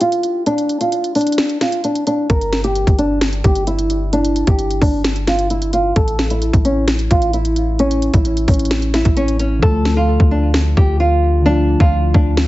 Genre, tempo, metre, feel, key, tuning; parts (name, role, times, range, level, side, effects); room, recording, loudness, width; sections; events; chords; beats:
hip hop, trap; 131 BPM; 4/4; half-time; D harmonic minor; A4 = 439 Hz
nylon-string guitar; melody; 0.0-12.3 s; C#4 to Bb4; -17 LUFS; equal; low-pass filter, tape echo
trap drum kit; drums; 0.0-12.5 s; hi-hat, kick drum, snare drum; -16 LUFS; equal
clean 808-style bass; bass; 2.3-12.5 s; G1 to D2; -18 LUFS; equal
muted felt-like synth keys; accompaniment; 9.6-12.5 s; D3 to F4; -20 LUFS; left 2 dB; chorus, low-pass filter
light reverb; heavily compressed radio sound, nothing above 7.8 kHz; -13 LUFS; side -16 dB against mid
0.0-12.5 A section
break 0.0-2.3; filter sweep 0.0-9.6; hi-hats muted 9.6-12.5
0.0 N.C.; 6.0 A; 9.6 Dm
0.01 | 0.47 0.92 1.38 1.84 | 2.30 2.75 3.21 3.67 | 4.13 4.59 5.05 5.50 | 5.96 6.42 6.88 7.34 | 7.79 8.25 8.71 9.17 | 9.63 10.08 10.54 11.00 | 11.46 11.92 12.37